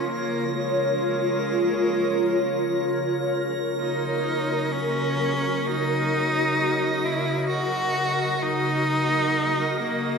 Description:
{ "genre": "ambient", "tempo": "free time", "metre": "none", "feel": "none", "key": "unclear", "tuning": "A4 = 442 Hz", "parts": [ { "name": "clear cello", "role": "melody", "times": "0.0-10.2 s", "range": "G#3 to F#4", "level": "-26 LUFS", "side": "equal", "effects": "shimmer reverb, ping-pong delay" }, { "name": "granular cloud pad", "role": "sustained chords", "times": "0.0-10.2 s", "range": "E#4 to D#5", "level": "-25 LUFS", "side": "equal", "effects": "built-in reverb, shimmer reverb" }, { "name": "organ-like drone", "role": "drone", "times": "0.0-10.2 s", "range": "C#3", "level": "-31 LUFS", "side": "equal", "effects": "ensemble chorus, built-in reverb" }, { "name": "drifting glass-harmonics texture", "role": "texture", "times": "0.0-10.2 s", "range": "A#6", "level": "-36 LUFS", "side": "right 3 dB", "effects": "chorus, built-in reverb, shimmer reverb" } ], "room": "wet cathedral reverb, RT60 6.1 s", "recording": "none", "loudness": "-22 LUFS", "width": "side -5 dB against mid", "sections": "0.0-10.2 A section", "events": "fade-in on synth drone 0.0-10.2; fade-in on synth texture 0.0-10.2", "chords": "0.0 A#m; 3.8 D#m" }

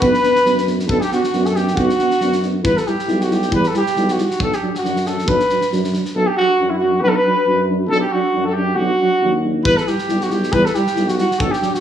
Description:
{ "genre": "balkan folk, Balkan brass band", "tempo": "137 BPM", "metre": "2/4", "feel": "swing 55% on 16ths", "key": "B minor", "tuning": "A4 = 440 Hz", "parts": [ { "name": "dark trumpet", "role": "melody", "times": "0.0-11.8 s", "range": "E4 to B4", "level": "-18 LUFS", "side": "right 1 dB", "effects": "none" }, { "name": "warm flugelhorn", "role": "second line", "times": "0.0-11.8 s", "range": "E4 to B4", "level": "-24 LUFS", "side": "left 3 dB", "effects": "none" }, { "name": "dark euphonium", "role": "accompaniment", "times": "0.0-11.7 s", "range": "D4 to E4", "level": "-25 LUFS", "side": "left 3 dB", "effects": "none" }, { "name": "dark euphonium", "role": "accompaniment", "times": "0.0-11.7 s", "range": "F#3 to B3", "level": "-24 LUFS", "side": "right 4 dB", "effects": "none" }, { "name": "warm tuba", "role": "bass", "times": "0.0-11.5 s", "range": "B1 to F#2", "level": "-22 LUFS", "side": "equal", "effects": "none" }, { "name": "big rock drum kit", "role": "percussion", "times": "0.0-6.1, 9.7-11.8 s", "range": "kick drum, snare drum", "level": "-26 LUFS", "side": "equal", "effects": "none" } ], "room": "moderate recital hall reverb, RT60 1.6 s", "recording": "studio reverb", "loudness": "-15 LUFS", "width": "side -9 dB against mid", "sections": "0.0-6.2 A section; 6.2-11.8 A section", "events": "none", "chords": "0.0 Bm; 2.6 Em; 4.4 Bm; 9.7 Em" }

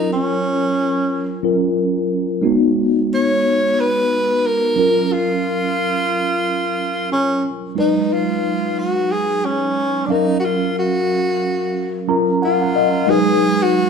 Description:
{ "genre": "soul", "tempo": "90 BPM", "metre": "4/4", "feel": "swing 58% on 16ths", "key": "unclear", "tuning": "A4 = 436 Hz", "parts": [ { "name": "breathy tenor saxophone", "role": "melody", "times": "0.0-13.9 s", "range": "C#4 to C#5", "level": "-18 LUFS", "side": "right 1 dB", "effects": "none" }, { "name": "mellow tine electric piano", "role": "accompaniment", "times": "0.0-13.9 s", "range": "F#3 to A#5", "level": "-18 LUFS", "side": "left 1 dB", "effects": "medium stereo tremolo" } ], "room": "wet stone room reverb, RT60 1.2 s", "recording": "band playing live in one room", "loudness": "-16 LUFS", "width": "side -6 dB against mid", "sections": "0.0-13.1 A section", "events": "tine electric piano fill 11.8-13.1", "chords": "0.0 F#maj7; 2.4 G#m7; 4.8 F#maj7; 7.8 G#m7; 10.1 F#maj7; 13.1 G#m7" }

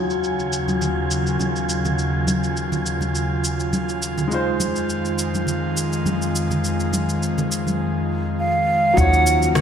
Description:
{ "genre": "sunset chillout", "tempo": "103 BPM", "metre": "4/4", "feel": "swing 54% on 16ths", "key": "Eb dorian", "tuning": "A4 = 439 Hz", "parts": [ { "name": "warm concert grand piano", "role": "accompaniment", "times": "0.0-9.6 s", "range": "F3 to Db5", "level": "-27 LUFS", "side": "moving between left 4 dB and right 3 dB", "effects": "auto-pan, ping-pong delay, shimmer reverb" }, { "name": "airy breathy pad", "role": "sustained chords", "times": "0.0-9.6 s", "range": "Eb2 to F4", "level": "-23 LUFS", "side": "left 1 dB", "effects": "chorus" }, { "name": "wind-like tuned noise texture", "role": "texture", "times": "0.0-7.8 s", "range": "Ab5", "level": "-32 LUFS", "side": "right 3 dB", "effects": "built-in reverb, lush chorus, shimmer reverb" }, { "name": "electronic shaker, rim click and congas", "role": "drums", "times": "0.1-9.6 s", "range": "none", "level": "-27 LUFS", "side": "equal", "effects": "low-pass filter on perc, low-pass filter on snare, gated reverb" }, { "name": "congas", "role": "percussion", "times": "0.7-7.8 s", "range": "none", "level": "-28 LUFS", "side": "right 1 dB", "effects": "none" }, { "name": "wooden flute", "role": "melody", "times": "8.4-9.6 s", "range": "F5 to Gb5", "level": "-17 LUFS", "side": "right 2 dB", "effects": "shimmer reverb" }, { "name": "upright bass", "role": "bass", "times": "9.0-9.6 s", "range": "Eb2", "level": "-19 LUFS", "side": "equal", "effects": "none" }, { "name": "electronic kick drum", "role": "drums", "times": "9.0-9.1 s", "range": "none", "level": "-22 LUFS", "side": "equal", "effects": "overdrive" } ], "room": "wet plate reverb, RT60 1.6 s, studio ambience", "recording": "bright 1980s-style digital production", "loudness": "-19 LUFS", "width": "side -8 dB against mid", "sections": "0.0-9.0 A section", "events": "none", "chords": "0.0 Ebm9; 4.3 Fm7; 9.0 Ebm9" }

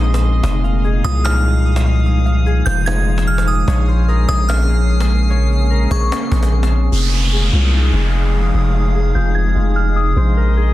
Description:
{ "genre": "hip hop, atmospheric cloud-rap", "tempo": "148 BPM", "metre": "4/4", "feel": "half-time", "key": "F minor", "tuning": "A4 = 440 Hz", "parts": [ { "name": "glassy FM pad", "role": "sustained chords", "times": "0.0-10.7 s", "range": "Bb2 to Eb4", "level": "-23 LUFS", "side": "left 1 dB", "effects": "ensemble chorus, built-in reverb, low-pass filter" }, { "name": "Celtic harp", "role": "arpeggios", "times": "0.0-10.7 s", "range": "F3 to Eb6", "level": "-27 LUFS", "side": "left 5 dB", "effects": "low-pass filter, tape echo" }, { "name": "long sustained 808-style bass", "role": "bass", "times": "0.0-10.7 s", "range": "F1 to C2", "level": "-14 LUFS", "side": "equal", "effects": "none" }, { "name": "cajon", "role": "drums", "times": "0.0-6.8 s", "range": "none", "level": "-27 LUFS", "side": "equal", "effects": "none" }, { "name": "drifting glass-harmonics texture", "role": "texture", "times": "0.0-10.7 s", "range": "Db4 to C7", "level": "-27 LUFS", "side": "equal", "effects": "chorus, built-in reverb" }, { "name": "glassy synth bell", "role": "melody", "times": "1.0-10.2 s", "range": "Db6 to Ab6", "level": "-24 LUFS", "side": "right 1 dB", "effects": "chorus, phaser, low-pass filter, tape echo" }, { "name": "downlifter and riser", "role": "sound effects", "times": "6.9-10.7 s", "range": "none", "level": "-24 LUFS", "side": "right 1 dB", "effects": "none" } ], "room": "little or no reverb", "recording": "dense, heavily limited modern master", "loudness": "-13 LUFS", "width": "side -15 dB against mid", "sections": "0.0-6.9 A section; 6.9-10.7 B section", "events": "filter sweep 6.9-10.7", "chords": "0.4 Fm7; 3.7 Bbm9; 6.9 Fm7; 10.2 Bb9sus4" }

